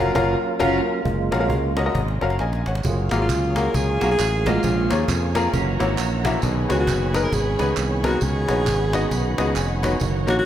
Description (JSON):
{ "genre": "uptempo gospel", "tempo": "134 BPM", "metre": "4/4", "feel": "swing 60% on 8ths", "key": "F# major", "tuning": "A4 = 438 Hz", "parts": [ { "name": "bright upright piano", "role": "accompaniment", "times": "0.0-10.4 s", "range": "A#2 to G#5", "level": "-24 LUFS", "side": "left 3 dB", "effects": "none" }, { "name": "tonewheel organ", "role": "sustained chords", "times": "0.0-10.5 s", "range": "D3 to A#4", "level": "-28 LUFS", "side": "right 3 dB", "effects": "slow rotary speaker, overdrive, chorus vibrato" }, { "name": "modern bright fingered electric bass", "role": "bass", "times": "0.0-10.4 s", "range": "E#1 to E#2", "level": "-24 LUFS", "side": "equal", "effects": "none" }, { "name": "cajon", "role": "drums", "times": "0.2-10.4 s", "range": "none", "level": "-29 LUFS", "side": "equal", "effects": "none" }, { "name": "clean electric guitar", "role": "second line", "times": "0.6-0.8, 4.0-6.4 s", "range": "G#3 to A#4", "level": "-30 LUFS", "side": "right 9 dB", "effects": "wide subtle chorus, slapback echo" }, { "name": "muted studio string section", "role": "sustained chords", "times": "1.1-10.5 s", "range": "F#3 to B5", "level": "-34 LUFS", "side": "equal", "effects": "none" }, { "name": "tambourine and handclaps", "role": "percussion", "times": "2.8-10.4 s", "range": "none", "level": "-34 LUFS", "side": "right 9 dB", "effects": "none" }, { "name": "warm alto saxophone", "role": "melody", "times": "3.1-10.5 s", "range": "E#4 to B4", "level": "-25 LUFS", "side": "equal", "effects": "tape echo" } ], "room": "moderate lush hall reverb, RT60 1.7 s, studio ambience", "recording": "big arena sound", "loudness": "-19 LUFS", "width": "side -11 dB against mid", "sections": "0.0-1.1 A section; 1.1-2.8 B section; 2.8-10.5 C section", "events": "band accent 0.0-1.1; tonewheel organ solo 1.1-2.8; drum fill 1.9-2.8; upright piano fill 9.1-10.0", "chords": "0.0 F#maj7; 2.8 F#maj9; 4.6 A#m7; 5.5 F#7; 6.4 B69; 8.2 C#9sus4" }